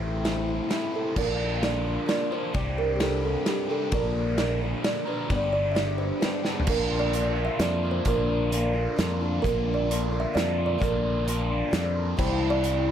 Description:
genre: folk rock and heartland rock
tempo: 131 BPM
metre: 3/4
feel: straight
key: unclear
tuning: A4 = 440 Hz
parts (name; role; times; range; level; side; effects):
- kalimba; melody; 0.0-12.9 s; G4 to E5; -29 LUFS; right 3 dB; plate reverb, analog delay
- picked twelve-string acoustic guitar; accompaniment; 0.0-12.9 s; G2 to Bb4; -32 LUFS; left 6 dB; plate reverb
- biting overdriven guitar; riff; 0.0-12.9 s; G2 to Bb4; -32 LUFS; right 1 dB; phaser
- fingered electric bass; bass; 0.0-12.9 s; G1 to F2; -29 LUFS; equal; none
- loose indie drum kit; drums; 0.2-12.8 s; crash cymbal, hi-hat, kick drum, ride cymbal, snare drum, toms; -30 LUFS; equal; none
room: light reverb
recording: none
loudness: -23 LUFS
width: side -9 dB against mid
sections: 0.0-1.2 A section; 1.2-6.7 B section; 6.7-12.9 C section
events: drum fill 6.5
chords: 0.0 Am; 1.2 Bb; 2.5 Csus2; 3.9 Bb; 5.3 G; 6.7 Bb; 12.2 C

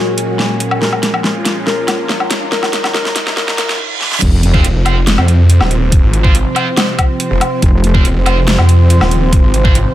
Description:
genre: heavy wobble dubstep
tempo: 141 BPM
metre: 4/4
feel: half-time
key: F phrygian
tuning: A4 = 436 Hz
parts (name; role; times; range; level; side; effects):
- felt-muted upright piano; melody; 0.0-3.8 s; Bb4 to Db5; -22 LUFS; left 3 dB; low-pass filter, dub echo
- supersaw pad; sustained chords; 0.0-9.9 s; Bb2 to Gb4; -21 LUFS; equal; phaser, sidechain pumping
- riser and reverse cymbal; sound effects; 1.4-4.2 s; none; -25 LUFS; right 4 dB; none
- warbly tape-like pad; texture; 0.0-9.9 s; Eb4 to C6; -23 LUFS; equal; chorus, built-in reverb, sidechain pumping
- dubstep drum kit; drums; 0.2-9.8 s; crash cymbal, hi-hat, snare drum, woodblock; -16 LUFS; left 1 dB; none
- wobble bass; bass; 4.2-4.6, 7.6-8.0 s; F1; -11 LUFS; equal; chorus, overdrive
- electronic kick drum; drums; 4.2-9.7 s; none; -11 LUFS; equal; none
- tight distorted guitar; stabs; 4.5-9.7 s; C4 to C5; -21 LUFS; right 3 dB; distortion, dub echo
- snarling distorted saw bass; bass; 4.6-9.8 s; Eb1 to F2; -10 LUFS; equal; distortion, overdrive
room: little or no reverb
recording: high-pass filter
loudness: -10 LUFS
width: side -13 dB against mid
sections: 0.0-4.2 A section; 4.2-9.9 B section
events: build-up 0.0-4.2; drum fill 0.0-3.8, 4.0; filter sweep 0.0-4.2; reverse cymbal 3.4-4.2; drop 4.2-9.9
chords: 0.0 Gbadd9; 0.8 Db6; 2.5 Ebm7; 4.2 F5

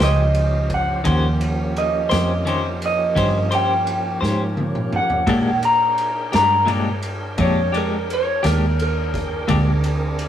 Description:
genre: slow blues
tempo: 57 BPM (dotted quarters)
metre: 12/8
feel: straight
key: Eb mixolydian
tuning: A4 = 440 Hz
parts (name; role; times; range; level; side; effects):
- electric guitar through a small old amp; second line; 0.0-10.3 s; Bb4 to Bb5; -21 LUFS; equal; none
- clean electric guitar; accompaniment; 0.0-9.7 s; Bb2 to C5; -23 LUFS; left 3 dB; tremolo
- mellow saxophone section; sustained chords; 0.0-10.3 s; D4 to D5; -36 LUFS; left 2 dB; none
- tonewheel organ; sustained chords; 0.0-10.3 s; Eb3 to G5; -29 LUFS; equal; overdrive, chorus vibrato, slow rotary speaker
- vintage muted fingered electric bass; bass; 0.0-10.3 s; Db2 to Bb2; -22 LUFS; equal; none
- vintage drum kit; drums; 0.0-10.3 s; kick drum, ride cymbal, snare drum, toms; -28 LUFS; equal; none
room: wet stone room reverb, RT60 1.1 s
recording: rough rehearsal-room recording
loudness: -17 LUFS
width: side -10 dB against mid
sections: 0.0-10.3 A section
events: clean electric guitar solo 0.0-10.3; drum fill 4.2-5.3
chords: 0.0 Eb13; 5.3 Bb13

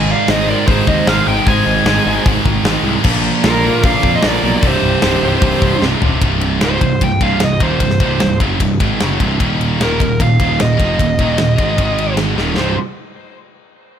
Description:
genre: heavy metal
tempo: 151 BPM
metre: 4/4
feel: straight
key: C minor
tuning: A4 = 439 Hz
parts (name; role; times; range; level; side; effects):
- high-gain lead guitar; melody; 0.0-12.8 s; Bb4 to Ab5; -19 LUFS; right 1 dB; distortion
- high-gain lead guitar; second line; 0.0-5.8 s; F4 to Eb5; -25 LUFS; right 1 dB; distortion
- dark studio string section; sustained chords; 0.0-6.2 s; C3 to D5; -27 LUFS; left 3 dB; none
- heavy high-gain guitar; riff; 0.0-12.7 s; C2 to Bb3; -21 LUFS; left 14 dB; distortion
- scooped high-gain guitar; riff; 0.0-12.7 s; C2 to Bb3; -18 LUFS; right 8 dB; distortion
- fuzz picked electric bass; bass; 0.0-12.8 s; C1 to F2; -19 LUFS; left 1 dB; overdrive
- tight metal drum kit; drums; 0.3-12.7 s; crash cymbal, hi-hat, kick drum, ride cymbal, snare drum, toms; -18 LUFS; left 1 dB; none
room: small room ambience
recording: none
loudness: -12 LUFS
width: side -9 dB against mid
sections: 0.0-6.2 A section; 6.2-12.6 B section; 12.6-14.0 C section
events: drum fill 5.8-6.2, 12.4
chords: 0.0 Ab; 3.0 Bb; 4.6 Cm; 9.4 Eb5; 11.8 Ab5; 12.4 Eb5; 12.6 C5

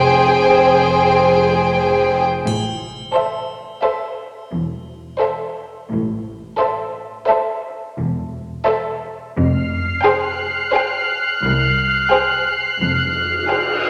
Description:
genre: cinematic, suspense film score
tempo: 87 BPM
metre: 5/4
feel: straight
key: A minor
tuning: A4 = 440 Hz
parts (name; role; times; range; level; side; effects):
- warm studio violin section; melody; 0.0-13.9 s; E5 to G5; -24 LUFS; equal; none
- dark studio violin section; second line; 0.0-13.9 s; Ab4 to C5; -20 LUFS; equal; none
- rich studio double bass section; bass; 0.0-13.4 s; E1 to C2; -29 LUFS; equal; none
- warm studio cello section; bass; 0.0-13.4 s; C2 to A2; -26 LUFS; equal; none
- triangle; percussion; 2.5-3.8 s; none; -36 LUFS; equal; none
- warm studio violin section; texture; 9.4-13.9 s; F6 to C7; -20 LUFS; equal; none
- cymbal swell; sound effects; 12.9-13.9 s; none; -27 LUFS; equal; none
room: wet concert hall reverb, RT60 2.1 s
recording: none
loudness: -18 LUFS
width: mono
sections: 0.0-13.9 A section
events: cymbal swell 12.9-13.9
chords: 0.0 Fmadd9; 2.5 Am; 9.4 Fmadd9

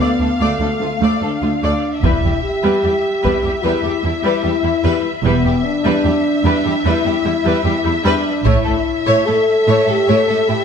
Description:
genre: cinematic, epic orchestral film score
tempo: 74 BPM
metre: 4/4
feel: straight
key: E phrygian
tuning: A4 = 440 Hz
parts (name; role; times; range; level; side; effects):
- warm symphonic violin section; melody; 0.0-10.6 s; E5 to F5; -24 LUFS; left 3 dB; none
- warm symphonic violin section; second line; 0.0-10.6 s; E4 to D5; -22 LUFS; left 2 dB; none
- rich symphonic viola section; accompaniment; 0.0-10.6 s; G3 to A3; -24 LUFS; right 2 dB; none
- mellow French horn section; sustained chords; 0.0-10.6 s; A3 to A4; -18 LUFS; left 2 dB; none
- warm symphonic cello section; bass; 0.0-10.6 s; D2 to A2; -21 LUFS; right 4 dB; none
- warm symphonic double bass section; bass; 2.0-8.6 s; E1 to A1; -21 LUFS; right 5 dB; none
- taiko ensemble; drums; 2.0-10.0 s; none; -21 LUFS; left 1 dB; none
room: moderate scoring stage reverb, RT60 1.9 s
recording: none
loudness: -14 LUFS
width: side -7 dB against mid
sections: 0.0-10.6 A section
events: none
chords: 0.0 Dm; 2.0 Em; 8.5 A

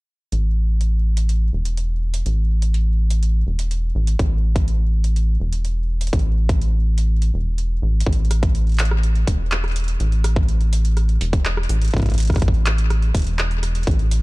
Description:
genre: IDM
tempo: 124 BPM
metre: 4/4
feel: straight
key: unclear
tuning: A4 = 435 Hz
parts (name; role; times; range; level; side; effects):
- rubbery square bass; bass; 0.3-14.2 s; E1 to A1; -18 LUFS; equal; none
- electro analog drum machine; drums; 0.3-14.2 s; handclaps, hi-hat, rim click; -28 LUFS; right 1 dB; ping-pong delay
- electronic kick drum; drums; 4.2-14.0 s; none; -21 LUFS; equal; none
room: little or no reverb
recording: dark, warm production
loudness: -17 LUFS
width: side -23 dB against mid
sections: 0.3-8.1 A section; 8.1-14.2 B section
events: filter sweep on analog synth bass 0.3-8.1; kick drops out 7.1-8.1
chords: none

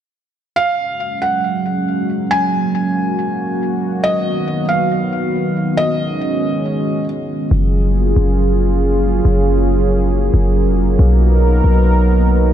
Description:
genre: hip hop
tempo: 138 BPM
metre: 4/4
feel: half-time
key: F# major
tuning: A4 = 440 Hz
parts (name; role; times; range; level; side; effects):
- felt-muted upright piano; melody; 0.6-7.0 s; D#5 to G#5; -20 LUFS; equal; ping-pong delay
- dark analog pad; sustained chords; 0.6-12.5 s; D#3 to A#4; -17 LUFS; right 1 dB; chorus
- warm 808-style bass; bass; 7.5-12.5 s; E#1 to B1; -13 LUFS; equal; none
room: light reverb, studio reverb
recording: none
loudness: -14 LUFS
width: side -10 dB against mid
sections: 0.6-7.5 A section; 7.5-12.5 B section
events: none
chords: 0.6 F#add9; 4.0 Bmaj7; 5.8 C#9sus4; 7.5 F#maj9; 11.0 Bmaj7

